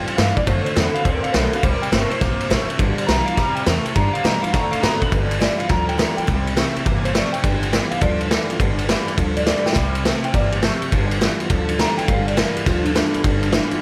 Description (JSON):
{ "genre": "rockabilly", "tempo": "207 BPM", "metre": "4/4", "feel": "swing 65% on 8ths", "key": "unclear", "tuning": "A4 = 444 Hz", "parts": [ { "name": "electric guitar through a small old amp", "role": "melody", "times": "0.0-13.8 s", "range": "D4 to B5", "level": "-27 LUFS", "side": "equal", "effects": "tape echo" }, { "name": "picked steel-string acoustic guitar", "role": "accompaniment", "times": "0.0-13.8 s", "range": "G2 to F#4", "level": "-31 LUFS", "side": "equal", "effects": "none" }, { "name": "twangy electric guitar", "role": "riff", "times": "0.0-13.8 s", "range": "G2 to C4", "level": "-28 LUFS", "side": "equal", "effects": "ensemble chorus" }, { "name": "upright bass", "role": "bass", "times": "0.0-13.8 s", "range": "G1 to D3", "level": "-27 LUFS", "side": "equal", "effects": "none" }, { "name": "vintage drum kit", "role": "drums", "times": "0.1-13.8 s", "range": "kick drum, ride cymbal, snare drum", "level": "-22 LUFS", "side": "equal", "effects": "none" } ], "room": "light reverb, studio ambience", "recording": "none", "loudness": "-19 LUFS", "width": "mono", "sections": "0.0-5.1 A section; 5.1-13.8 B section", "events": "clean electric guitar solo 0.0-5.1; drum fill 9.6", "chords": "0.5 D7; 1.6 C7; 2.8 G7; 3.4 C7; 4.0 G7; 4.5 D7; 5.1 G7; 6.3 C7; 7.4 G7; 9.8 C7; 10.9 G7", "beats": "0.18 | 0.47 0.76 1.05 1.34 | 1.63 1.92 2.21 2.50 | 2.79 3.09 3.38 3.67 | 3.96 4.25 4.54 4.83 | 5.12 5.41 5.70 5.99 | 6.28 6.57 6.86 7.15 | 7.44 7.73 8.02 8.31 | 8.60 8.89 9.18 9.47 | 9.76 10.05 10.34 10.63 | 10.92 11.21 11.50 11.79 | 12.08 12.37 12.66 12.95 | 13.24 13.53" }